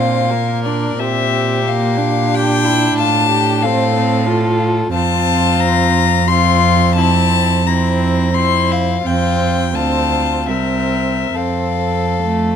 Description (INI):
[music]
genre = classical, slow romantic movement for string quartet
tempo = 66-94 BPM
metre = 3/4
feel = rubato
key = F major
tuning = A4 = 440 Hz
[part]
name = warm violin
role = melody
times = 0.0-12.6 s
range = D5 to C6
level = -18 LUFS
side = left 10 dB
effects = none
[part]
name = dark violin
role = second line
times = 0.0-12.6 s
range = E4 to Bb4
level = -22 LUFS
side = left 4 dB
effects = none
[part]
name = warm viola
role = accompaniment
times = 0.0-12.6 s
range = A3 to F4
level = -20 LUFS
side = right 2 dB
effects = none
[part]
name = clear cello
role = bass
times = 0.0-12.6 s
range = C2 to Bb2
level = -17 LUFS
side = right 4 dB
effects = none
[sound]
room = light reverb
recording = close, detailed microphones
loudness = -13 LUFS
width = side -8 dB against mid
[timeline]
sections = 0.0-12.6 A section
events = none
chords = 0.0 Bb; 3.0 F/A; 4.9 F; 9.7 Dm7; 10.5 C7; 11.3 F